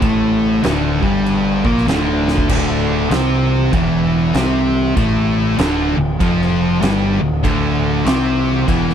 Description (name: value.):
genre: stoner and doom metal.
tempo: 97 BPM.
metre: 4/4.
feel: swing 63% on 8ths.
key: D minor.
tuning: A4 = 440 Hz.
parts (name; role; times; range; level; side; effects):
thick fuzz guitar; riff; 0.0-8.9 s; D2 to C4; -19 LUFS; left 9 dB; distortion.
thick fuzz guitar; riff; 0.0-8.9 s; D2 to C4; -20 LUFS; right 9 dB; distortion.
tight distorted guitar; riff; 0.0-8.9 s; D2 to C4; -22 LUFS; equal; distortion.
growling picked electric bass; bass; 0.0-8.9 s; D1 to C2; -21 LUFS; equal; overdrive.
oversized low-tuned drum kit; drums; 0.0-8.9 s; crash cymbal, kick drum, snare drum; -21 LUFS; equal; none.
room: little or no reverb.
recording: none.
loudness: -14 LUFS.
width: side -8 dB against mid.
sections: 0.0-2.5 A section; 2.5-8.9 B section.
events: drum fill 2.2-2.5.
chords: 0.0 D5; 2.5 Dm.